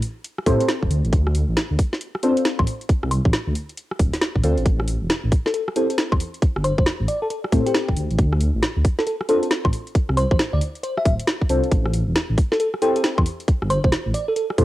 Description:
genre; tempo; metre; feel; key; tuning
UK garage, two-step garage; 136 BPM; 4/4; swing 64% on 16ths; A minor; A4 = 443 Hz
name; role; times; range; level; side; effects
garage drum kit; drums; 0.0-14.6 s; hi-hat, rim click, snare drum, woodblock; -24 LUFS; equal; cassette tape
deep mellow chord stab; stabs; 0.5-14.6 s; C4 to C5; -22 LUFS; equal; chorus, phaser, cassette tape, analog delay
dark detuned saw bass; bass; 0.5-14.6 s; D1 to A2; -22 LUFS; equal; none
electronic kick drum; drums; 0.5-14.6 s; none; -18 LUFS; equal; cassette tape
bell-like FM electric piano; melody; 5.5-14.5 s; G4 to E5; -25 LUFS; equal; chorus, phaser, cassette tape
room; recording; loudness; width
light reverb, digital ambience; home recording on cassette; -18 LUFS; side -16 dB against mid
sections
0.0-14.6 A section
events
none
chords
0.0 Am7; 0.9 D7(no3); 4.7 Am7; 8.0 D7(no3); 11.7 Am7

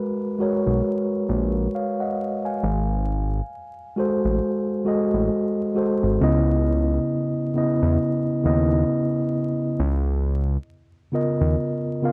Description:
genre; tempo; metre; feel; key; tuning
lo-fi hip hop; 67 BPM; 4/4; swing 60% on 16ths; unclear; A4 = 440 Hz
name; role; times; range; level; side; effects
mellow tine electric piano; accompaniment; 0.0-12.1 s; C#3 to G#5; -24 LUFS; equal; low-pass filter
fat analog bass; bass; 0.7-11.6 s; G#1 to E2; -24 LUFS; equal; none
room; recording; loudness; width
moderate plate reverb, RT60 2.6 s; dark, warm production, vinyl crackle; -23 LUFS; mono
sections
0.0-12.1 A section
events
none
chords
0.0 G#m9; 2.6 G#7b9; 6.2 C#m9; 9.8 C#13

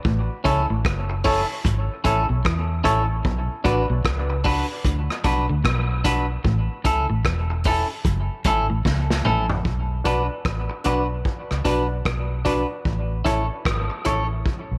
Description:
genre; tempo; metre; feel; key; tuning
dub reggae; 75 BPM; 4/4; swing 62% on 16ths; B dorian; A4 = 439 Hz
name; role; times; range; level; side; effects
electric guitar at the edge of break-up; riff; 0.0-9.5 s; E2 to E3; -32 LUFS; equal; none
vintage drum kit; drums; 0.0-14.7 s; hi-hat, kick drum, rim click, snare drum, toms; -27 LUFS; equal; none
vintage muted fingered electric bass; bass; 0.1-14.8 s; E1 to E2; -27 LUFS; equal; none
clean electric guitar; accompaniment; 0.4-14.3 s; C#4 to C#5; -28 LUFS; equal; dub echo
barky reed electric piano; stabs; 0.4-3.8, 10.0-14.2 s; C#4 to D5; -31 LUFS; equal; overdrive, dub echo
room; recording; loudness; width
moderate spring reverb, RT60 2.5 s; none; -22 LUFS; mono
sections
0.0-9.7 A section; 9.7-14.8 B section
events
drum fill 8.9-9.7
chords
0.0 A; 3.2 Bm; 6.4 A; 9.7 Bm; 12.9 A

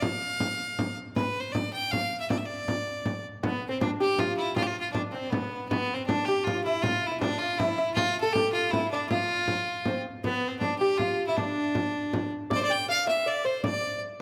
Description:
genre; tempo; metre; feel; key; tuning
medieval dance; 159 BPM; 3/4; straight; D dorian; A4 = 441 Hz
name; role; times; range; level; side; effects
bright fiddle; melody; 0.0-14.0 s; B3 to G5; -32 LUFS; equal; none
frame drum; percussion; 0.0-13.8 s; none; -34 LUFS; equal; none
lute; second line; 3.4-14.0 s; B3 to G5; -32 LUFS; equal; none
room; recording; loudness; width
moderate concert hall reverb, RT60 1.8 s; none; -28 LUFS; mono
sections
0.0-3.4 A section; 3.4-12.5 A section; 12.5-14.2 B section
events
none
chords
none

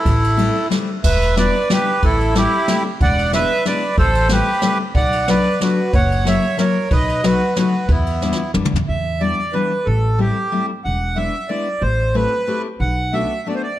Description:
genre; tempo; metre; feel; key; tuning
musette waltz; 183 BPM; 3/4; swing 54% on 8ths; E minor; A4 = 440 Hz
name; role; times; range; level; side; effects
accordion; melody; 0.0-13.8 s; B3 to F#5; -19 LUFS; right 2 dB; none
upright bass; bass; 0.1-13.2 s; E1 to F#2; -20 LUFS; equal; none
jazz brush drum kit; drums; 0.1-8.8 s; crash cymbal, kick drum, ride cymbal, snare drum, toms; -21 LUFS; equal; none
picked steel-string acoustic guitar; accompaniment; 0.4-13.6 s; E3 to G4; -21 LUFS; left 4 dB; none
room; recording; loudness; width
light reverb; dark, warm production; -15 LUFS; side -13 dB against mid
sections
0.0-1.0 A section; 1.0-8.9 B section; 8.9-13.8 B section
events
drum fill 8.2-8.9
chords
0.1 Am7; 1.0 Em7; 2.0 Am7; 3.0 E7; 4.0 Am7; 5.0 Bm7; 5.9 F#7; 6.9 B7; 7.9 Em7; 9.9 Am7; 10.8 E7; 11.8 Am7; 12.8 Bm7

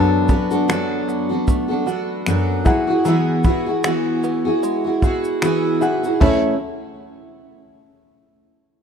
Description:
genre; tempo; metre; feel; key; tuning
acoustic pop; 76 BPM; 4/4; swing 55% on 16ths; A major; A4 = 439 Hz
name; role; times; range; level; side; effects
overdriven reed electric piano; accompaniment; 0.0-6.6 s; F#3 to A5; -23 LUFS; left 4 dB; spring reverb
picked steel-string acoustic guitar; accompaniment; 0.0-6.5 s; F#2 to C#5; -19 LUFS; right 1 dB; double-tracked left and right
open-back banjo; arpeggios; 0.0-6.5 s; D3 to F#4; -28 LUFS; right 6 dB; none
loose indie drum kit; drums; 0.3-6.4 s; crash cymbal, finger snaps, kick drum, shaker, toms; -18 LUFS; equal; none
room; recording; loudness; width
light reverb, small room ambience; rough home demo mix; -16 LUFS; side -7 dB against mid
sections
0.0-6.2 A section; 6.2-8.8 B section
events
none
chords
0.0 Bm7/F#; 2.7 Eadd9; 6.2 A

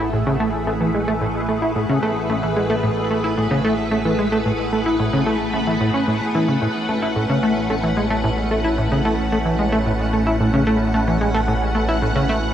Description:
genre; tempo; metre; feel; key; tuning
ambient, sequencer-driven space music; 111 BPM; 4/4; straight; A major; A4 = 440 Hz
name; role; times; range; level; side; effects
string machine, full ensemble; sustained chords; 0.0-12.5 s; A3 to F#5; -22 LUFS; equal; phaser, ensemble chorus
plucky analog bass; riff; 0.0-12.4 s; A2 to E4; -20 LUFS; equal; lush chorus, analog delay
analog drone; bass; 0.0-12.5 s; A1; -26 LUFS; equal; chorus
pulsing gated texture; texture; 0.0-12.5 s; C#4 to G#4; -29 LUFS; equal; chorus, built-in reverb
room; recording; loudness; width
moderate plate reverb, RT60 3.0 s; none; -17 LUFS; side -10 dB against mid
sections
0.0-12.5 A section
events
none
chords
0.0 A

